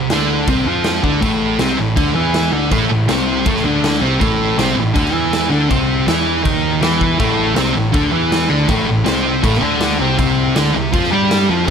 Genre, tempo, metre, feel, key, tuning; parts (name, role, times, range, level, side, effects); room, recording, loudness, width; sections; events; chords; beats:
garage rock duo or trio; 161 BPM; 4/4; straight; A minor; A4 = 440 Hz
thick fuzz guitar; riff; 0.0-11.7 s; A2 to G4; -15 LUFS; equal; distortion
growling picked electric bass; bass; 0.0-11.7 s; A1 to G2; -22 LUFS; equal; overdrive
raw garage drum kit; drums; 0.1-11.7 s; crash cymbal, kick drum, snare drum; -20 LUFS; equal
studio reverb; -13 LUFS; side -7 dB against mid
0.0-11.7 A section
0.0 C5; 1.2 Am; 10.2 C5
0.10 0.48 0.85 | 1.22 1.60 1.97 2.34 | 2.72 3.09 3.46 3.84 | 4.21 4.59 4.96 5.33 | 5.71 6.08 6.45 6.83 | 7.20 7.57 7.95 8.32 | 8.70 9.07 9.44 9.82 | 10.19 10.56 10.94 11.31 | 11.68